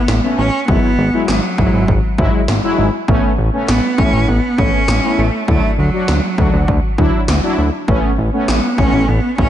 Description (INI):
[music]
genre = synth-pop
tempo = 100 BPM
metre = 4/4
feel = straight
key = A major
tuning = A4 = 440 Hz
[part]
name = clear cello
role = melody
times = 0.0-9.5 s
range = F#3 to C#4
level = -19 LUFS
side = right 2 dB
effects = tape echo
[part]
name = fat analog bass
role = bass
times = 0.1-9.5 s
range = G#1 to D2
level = -16 LUFS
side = equal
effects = none
[part]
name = 80s electronic pad drums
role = drums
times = 0.1-9.5 s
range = kick drum, snare drum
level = -18 LUFS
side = equal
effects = gated reverb
[part]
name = analog synth brass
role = accompaniment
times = 0.2-9.5 s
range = F#3 to F#4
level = -19 LUFS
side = left 1 dB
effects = chorus
[sound]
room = light reverb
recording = nothing above 10.6 kHz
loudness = -12 LUFS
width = side -11 dB against mid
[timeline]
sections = 0.0-9.5 A section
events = none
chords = 0.0 Aadd9; 0.7 Eadd9/G#; 3.1 Aadd9; 5.5 Dadd9; 7.9 Aadd9